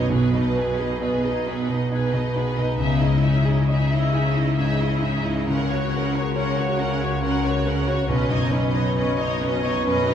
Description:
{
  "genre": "cinematic, emotional film score for orchestra",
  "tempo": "67 BPM",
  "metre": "3/4",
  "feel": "rubato",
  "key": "B major",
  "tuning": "A4 = 440 Hz",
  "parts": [
    { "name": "rich studio violin section", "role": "melody", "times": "0.0-10.1 s", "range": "B4 to F#5", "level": "-30 LUFS", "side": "left 2 dB", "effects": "none" },
    { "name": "clear studio violin section", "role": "second line", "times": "0.0-10.1 s", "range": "D#4 to D#5", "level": "-30 LUFS", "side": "right 1 dB", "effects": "none" },
    { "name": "clear concert grand piano", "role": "accompaniment", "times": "0.0-10.1 s", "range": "B1 to F#5", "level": "-26 LUFS", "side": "equal", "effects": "none" },
    { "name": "rich studio viola section", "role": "accompaniment", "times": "0.0-10.1 s", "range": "B3 to F#4", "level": "-29 LUFS", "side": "right 2 dB", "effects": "none" },
    { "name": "concert harp", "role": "arpeggios", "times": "0.0-10.1 s", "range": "B2 to F#5", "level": "-25 LUFS", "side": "left 5 dB", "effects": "none" },
    { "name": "rich studio cello section", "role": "bass", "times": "0.0-10.1 s", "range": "B2 to C#3", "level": "-28 LUFS", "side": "right 3 dB", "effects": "none" },
    { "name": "rich studio double bass section", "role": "bass", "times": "0.0-10.1 s", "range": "B1 to C#2", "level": "-30 LUFS", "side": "right 3 dB", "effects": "none" }
  ],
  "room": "wet recital hall reverb, RT60 1.6 s",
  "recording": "heard from further back in the room",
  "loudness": "-20 LUFS",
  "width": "side -9 dB against mid",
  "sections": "0.0-10.1 A section",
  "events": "none",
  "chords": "0.1 G#m/B; 2.8 C#madd9; 5.5 F#/C#; 8.1 Badd9",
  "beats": "| 0.11 1.02 1.92 | 2.80 3.69 4.59 | 5.48 6.36 7.23 | 8.09 8.96 9.86"
}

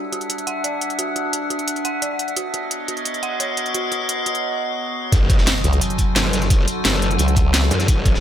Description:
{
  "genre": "dark technical drum and bass",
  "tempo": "174 BPM",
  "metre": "4/4",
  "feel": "straight",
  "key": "F# phrygian",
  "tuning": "A4 = 440 Hz",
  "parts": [
    { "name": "metallic inharmonic drone", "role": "sustained chords", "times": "0.0-8.2 s", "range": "F#3 to F#5", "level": "-23 LUFS", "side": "equal", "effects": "chorus, built-in reverb, phaser, sidechain pumping" },
    { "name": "dark detuned synth bell", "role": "arpeggios", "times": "0.1-4.4 s", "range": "F#4 to F#5", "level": "-30 LUFS", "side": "right 3 dB", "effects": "chorus, sidechain pumping, ping-pong delay" },
    { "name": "drum and bass drum kit", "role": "drums", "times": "0.1-8.1 s", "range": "hi-hat, snare drum", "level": "-22 LUFS", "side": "equal", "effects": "none" },
    { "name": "growl bass", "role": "bass", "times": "5.1-8.2 s", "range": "F#1 to F#2", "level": "-20 LUFS", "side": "equal", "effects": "chorus" },
    { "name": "crunchy breakbeat drum kit", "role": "drums", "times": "5.1-8.2 s", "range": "hi-hat, snare drum", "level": "-29 LUFS", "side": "equal", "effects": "high-pass filter on hats, high-pass filter on snare, high-pass filter on room" },
    { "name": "electronic kick drum", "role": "drums", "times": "5.1-8.1 s", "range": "none", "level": "-16 LUFS", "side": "equal", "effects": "none" },
    { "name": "impact", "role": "sound effects", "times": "5.1-6.5 s", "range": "none", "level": "-25 LUFS", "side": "equal", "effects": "none" },
    { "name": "formant-sweep wobble bass", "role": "bass", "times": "5.6-7.7 s", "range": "C#2", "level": "-17 LUFS", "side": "equal", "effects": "chorus" }
  ],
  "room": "light reverb",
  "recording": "none",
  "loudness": "-18 LUFS",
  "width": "side -10 dB against mid",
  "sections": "0.0-5.1 A section; 5.1-8.2 B section",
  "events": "filter sweep on synth drone 0.0-5.1; filter sweep on synth bell 0.0-5.1; break 4.4-5.1; drop 5.1-8.2; impact 5.1-6.5",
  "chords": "0.0 D; 2.4 B; 5.1 F#m",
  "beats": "0.30 0.64 | 0.99 1.33 1.68 2.02 | 2.37 2.71 3.06 3.40 | 3.75 4.09 4.43 4.78 | 5.12 5.47 5.81 6.16 | 6.50 6.85 7.19 7.54 | 7.88"
}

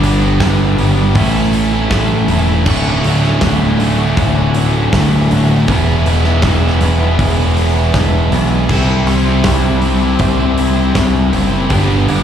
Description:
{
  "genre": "quiet-loud alternative rock",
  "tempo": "80 BPM",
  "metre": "4/4",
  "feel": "straight",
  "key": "D major",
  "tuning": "A4 = 438 Hz",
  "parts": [
    { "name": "cranked stack guitar", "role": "riff", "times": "0.0-12.2 s", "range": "D2 to C5", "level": "-20 LUFS", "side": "equal", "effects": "overdrive" },
    { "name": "distorted electric guitar", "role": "riff", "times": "0.0-12.2 s", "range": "D2 to C5", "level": "-18 LUFS", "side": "right 10 dB", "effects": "distortion" },
    { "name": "thick fuzz guitar", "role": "riff", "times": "0.0-12.2 s", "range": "D2 to C5", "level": "-18 LUFS", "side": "left 10 dB", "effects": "distortion" },
    { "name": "growling picked electric bass", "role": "bass", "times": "0.0-12.2 s", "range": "D1 to C2", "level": "-14 LUFS", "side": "equal", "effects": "overdrive" },
    { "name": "big rock drum kit", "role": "drums", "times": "0.0-12.2 s", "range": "crash cymbal, hi-hat, kick drum, snare drum", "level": "-19 LUFS", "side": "equal", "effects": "none" }
  ],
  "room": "light reverb",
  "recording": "live gig heard through the venue's PA, club reverb",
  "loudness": "-11 LUFS",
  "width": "side -9 dB against mid",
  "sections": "0.0-12.2 A section",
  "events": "none",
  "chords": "0.0 G; 1.2 A; 2.7 Dmaj7; 5.7 E; 8.7 C; 11.7 G",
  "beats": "0.40 1.15 1.91 | 2.66 3.41 4.17 4.92 | 5.67 6.43 7.18 7.94 | 8.69 9.44 10.20 10.95 | 11.71"
}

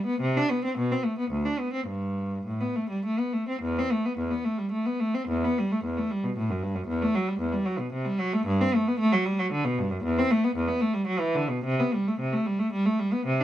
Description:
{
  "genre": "classical, baroque-style suite movement for unaccompanied cello",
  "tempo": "100-118 BPM",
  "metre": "3/4",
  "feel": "rubato",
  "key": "G major, E minor from 3.6 s",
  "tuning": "A4 = 440 Hz",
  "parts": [
    { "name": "rich cello", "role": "solo", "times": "0.0-13.4 s", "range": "D2 to D4", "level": "-24 LUFS", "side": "equal", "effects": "none" }
  ],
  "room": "light reverb",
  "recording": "none",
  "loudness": "-24 LUFS",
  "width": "side -12 dB against mid",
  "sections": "0.0-3.6 A section; 3.6-13.4 A section",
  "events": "none",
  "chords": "none",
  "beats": "| 0.22 0.77 1.32 | 1.89 2.47 3.05 | 3.63 4.18 4.71 | 5.28 5.83 6.35 | 6.88 7.39 7.92 | 8.46 9.00 9.52 | 10.03 10.55 11.07 | 11.63 12.18 12.72 | 13.26"
}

